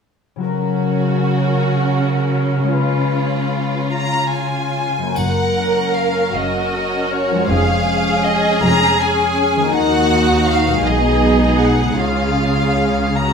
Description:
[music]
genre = classical, slow romantic movement for symphony orchestra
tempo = 52 BPM (dotted quarters)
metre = 6/8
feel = rubato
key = F# major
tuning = A4 = 440 Hz
[part]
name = concert harp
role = arpeggios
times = 0.4-13.3 s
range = E#2 to D#5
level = -21 LUFS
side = left 3 dB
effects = none
[part]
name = warm chamber violin section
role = melody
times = 0.5-13.3 s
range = A#4 to A#5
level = -21 LUFS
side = left 1 dB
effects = none
[part]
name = warm symphonic violin section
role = second line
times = 0.5-13.3 s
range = E#4 to A#4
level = -22 LUFS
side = right 1 dB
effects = none
[part]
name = rich chamber viola section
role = accompaniment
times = 0.5-13.3 s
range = C#4 to A#4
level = -22 LUFS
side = right 1 dB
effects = none
[part]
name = warm chamber cello section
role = bass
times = 0.5-13.3 s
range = D#2 to C#3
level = -21 LUFS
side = right 1 dB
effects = none
[part]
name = rich chamber double bass section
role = bass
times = 5.2-13.3 s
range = E#1 to D#2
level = -22 LUFS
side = right 1 dB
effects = none
[part]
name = triangle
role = percussion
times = 5.2-6.7 s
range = none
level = -38 LUFS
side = left 2 dB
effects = none
[sound]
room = wet stone room reverb, RT60 1.3 s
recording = none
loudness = -14 LUFS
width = side -6 dB against mid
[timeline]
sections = 0.5-5.2 A section; 5.2-13.3 B section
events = none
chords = 0.5 F#/C#; 2.8 C#7; 5.2 F#; 7.5 C#/E#; 9.7 D#m; 10.9 G#m/B; 12.0 C#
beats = | 0.47 1.65 | 2.77 3.92 | 5.16 6.33 | 7.49 8.62 | 9.74 10.85 | 11.99 13.17

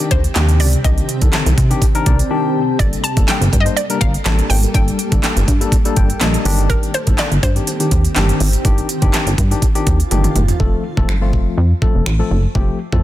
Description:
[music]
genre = dance-pop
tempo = 123 BPM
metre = 4/4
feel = straight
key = C dorian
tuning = A4 = 440 Hz
[part]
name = hollow square pluck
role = melody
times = 0.0-10.1 s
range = Bb4 to A5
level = -23 LUFS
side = left 1 dB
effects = chorus, tape echo
[part]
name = tine electric piano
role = accompaniment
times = 0.0-13.0 s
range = D3 to A5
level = -22 LUFS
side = left 5 dB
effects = overdrive, sidechain pumping
[part]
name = granular cloud pad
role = sustained chords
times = 0.0-10.6 s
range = C3 to A4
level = -24 LUFS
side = right 1 dB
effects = built-in reverb, sidechain pumping
[part]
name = pop drum kit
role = drums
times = 0.0-13.0 s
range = finger snaps, handclaps, hi-hat, kick drum, snare drum, toms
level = -16 LUFS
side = equal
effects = soft clipping on snare
[part]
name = plucky analog bass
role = bass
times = 0.1-13.0 s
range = F1 to C3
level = -16 LUFS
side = equal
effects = sidechain pumping
[sound]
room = little or no reverb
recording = dense, heavily limited modern master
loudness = -13 LUFS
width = side -14 dB against mid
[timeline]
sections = 0.0-10.6 A section; 10.6-13.0 B section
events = tine electric piano fill 1.8-2.8, 5.7-6.7; silent gap 2.3-2.8; drum fill 10.1-10.6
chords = 0.0 Cmadd9; 2.8 Gmadd9; 6.5 Cmadd9/G; 10.6 F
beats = 0.36 | 0.84 1.33 1.82 2.31 | 2.79 3.28 3.77 4.26 | 4.75 5.23 5.72 6.21 | 6.70 7.18 7.67 8.16 | 8.65 9.14 9.62 10.11 | 10.60 11.09 11.57 12.06 | 12.55

